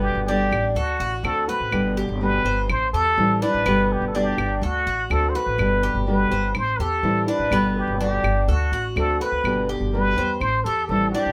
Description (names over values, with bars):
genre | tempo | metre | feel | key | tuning
latin, Cuban son and guajira | 124 BPM | 4/4 | straight | G major | A4 = 440 Hz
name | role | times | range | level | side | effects
trumpet with plunger mute | melody | 0.0-11.3 s | F#4 to C5 | -26 LUFS | equal | none
nylon-string guitar | accompaniment | 0.0-11.3 s | B2 to G4 | -27 LUFS | equal | none
Cuban tres | arpeggios | 0.0-11.3 s | B3 to C5 | -30 LUFS | equal | none
upright bass | bass | 0.0-11.3 s | G1 to E2 | -28 LUFS | equal | none
claves | percussion | 0.5-10.7 s | none | -32 LUFS | equal | none
room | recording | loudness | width
light reverb | none | -22 LUFS | mono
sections
0.0-11.3 A section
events
none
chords
0.0 G; 0.8 D7; 1.7 G; 2.7 Am7; 3.7 G; 4.6 D7; 5.6 G; 6.6 Am7; 7.5 G; 8.5 D7; 9.5 G; 10.4 Am7